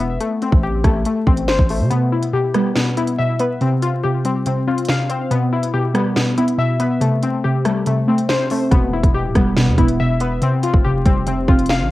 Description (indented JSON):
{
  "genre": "hip hop, drill",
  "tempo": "141 BPM",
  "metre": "4/4",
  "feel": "half-time",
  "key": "E phrygian",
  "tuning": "A4 = 441 Hz",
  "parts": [
    { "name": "glassy wavetable pluck", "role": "arpeggios", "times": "0.0-11.9 s", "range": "A3 to F5", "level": "-20 LUFS", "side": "left 4 dB", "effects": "chorus, low-pass filter, cassette tape, analog delay" },
    { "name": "long sustained 808-style bass", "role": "bass", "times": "0.0-1.9, 8.7-11.9 s", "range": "D1 to C3", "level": "-21 LUFS", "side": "equal", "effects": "none" },
    { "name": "drill drum kit", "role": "drums", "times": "0.2-11.8 s", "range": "hi-hat, kick drum, rim click, snare drum", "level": "-18 LUFS", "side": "equal", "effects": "cassette tape" },
    { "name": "warbly dusty pluck", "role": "accompaniment", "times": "1.9-11.9 s", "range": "B2 to C5", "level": "-18 LUFS", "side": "right 1 dB", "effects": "chorus, phaser, low-pass filter, cassette tape" }
  ],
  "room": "light reverb",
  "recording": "home recording on cassette, vinyl crackle",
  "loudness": "-15 LUFS",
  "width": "side -16 dB against mid",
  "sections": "0.0-11.9 A section",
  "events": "kick muted 1.9-8.7",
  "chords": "0.2 Am7; 1.9 Em; 3.6 Fsus2; 5.3 Em; 7.0 Am7; 8.7 Em; 10.4 Fsus2",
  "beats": "| 0.20 0.63 1.06 1.48 | 1.91 2.33 2.76 3.18 | 3.61 4.04 4.46 4.89 | 5.31 5.74 6.16 6.59 | 7.01 7.44 7.87 8.29 | 8.72 9.14 9.57 9.99 | 10.42 10.84 11.27 11.70"
}